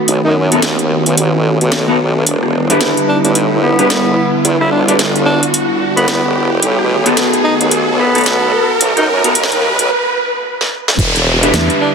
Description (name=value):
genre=glitch hop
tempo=110 BPM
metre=4/4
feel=swing 60% on 16ths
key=E minor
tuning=A4 = 440 Hz
part: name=breathy tenor saxophone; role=melody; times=0.0-11.9 s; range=B3 to E4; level=-18 LUFS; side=equal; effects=dub echo
part: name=warbly tape-like pad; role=sustained chords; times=0.0-11.9 s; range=D3 to F#4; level=-18 LUFS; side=equal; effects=chorus, built-in reverb, sidechain pumping
part: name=riser and downlifter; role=sound effects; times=0.0-11.9 s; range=none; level=-18 LUFS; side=right 2 dB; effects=none
part: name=formant-sweep wobble bass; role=bass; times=0.1-11.5 s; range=E1 to F#2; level=-16 LUFS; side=equal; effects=chorus, high-pass filter
part: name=drum and bass drum kit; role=drums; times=0.1-11.8 s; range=crash cymbal, hi-hat, rim click, snare drum, toms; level=-17 LUFS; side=equal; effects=high-pass filter on hats, high-pass filter on snare, high-pass filter on toms, high-pass filter on cymbals, high-pass filter on room
part: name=mellow electric guitar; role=stabs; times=0.5-11.9 s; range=B3 to B4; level=-18 LUFS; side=left 2 dB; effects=sidechain pumping, low-pass filter, dub echo
part: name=electronic kick drum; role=drums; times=11.0-11.1 s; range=none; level=-16 LUFS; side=equal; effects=none
part: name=fingered electric bass with an envelope filter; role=bass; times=11.5-11.7 s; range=E2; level=-16 LUFS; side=equal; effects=tube saturation
room=light reverb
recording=dense, heavily limited modern master, high-pass filter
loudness=-10 LUFS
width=side -5 dB against mid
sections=0.0-11.0 A section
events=build-up 0.0-11.0; riser 0.0-9.9; break 9.9-11.0; drum fill 10.6-11.0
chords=0.0 B7; 2.3 Em7; 6.6 B7; 11.0 Em7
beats=| 0.08 0.63 1.17 1.72 | 2.26 2.81 3.35 3.90 | 4.45 4.99 5.54 6.08 | 6.63 7.17 7.72 8.26 | 8.81 9.35 9.90 10.45 | 10.99 11.54